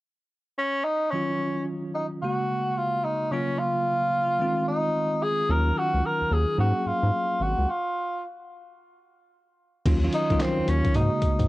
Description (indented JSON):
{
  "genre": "R&B, new jack swing",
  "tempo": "110 BPM",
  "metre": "4/4",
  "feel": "swing 64% on 16ths",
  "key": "Eb dorian",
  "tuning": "A4 = 441 Hz",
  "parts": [
    { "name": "clear tenor saxophone", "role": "melody", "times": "0.6-11.5 s", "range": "C4 to Bb4", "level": "-26 LUFS", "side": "equal", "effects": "none" },
    { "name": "bell-like tine electric piano", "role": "accompaniment", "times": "1.1-11.5 s", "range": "C3 to Ab4", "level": "-28 LUFS", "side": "equal", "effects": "fast stereo tremolo, cassette tape" },
    { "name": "round analog bass", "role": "bass", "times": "5.5-11.5 s", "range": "Ab1 to Ab2", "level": "-24 LUFS", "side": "equal", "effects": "none" },
    { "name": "boom bap sampler-style drum kit", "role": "drums", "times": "9.9-11.5 s", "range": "crash cymbal, handclaps, hi-hat, kick drum, snare drum", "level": "-25 LUFS", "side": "equal", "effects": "cassette tape" }
  ],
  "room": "little or no reverb",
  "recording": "home recording on cassette",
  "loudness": "-23 LUFS",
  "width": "side -18 dB against mid",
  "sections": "0.0-1.1 A section; 1.1-9.9 B section; 9.9-11.5 C section",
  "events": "stop 7.7-9.9",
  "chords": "0.0 N.C.; 1.1 Ebm9; 2.2 Ab9sus4; 3.3 Gbmaj7; 4.4 Fm7; 5.5 Ebm9; 6.6 Ab9sus4; 7.7 N.C.; 9.9 Ebm9; 10.9 Ab9sus4",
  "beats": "0.04 0.58 | 1.13 1.67 2.22 2.76 | 3.31 3.85 4.40 4.95 | 5.49 6.04 6.58 7.13 | 7.67 8.22 8.76 9.31 | 9.85 10.40 10.95"
}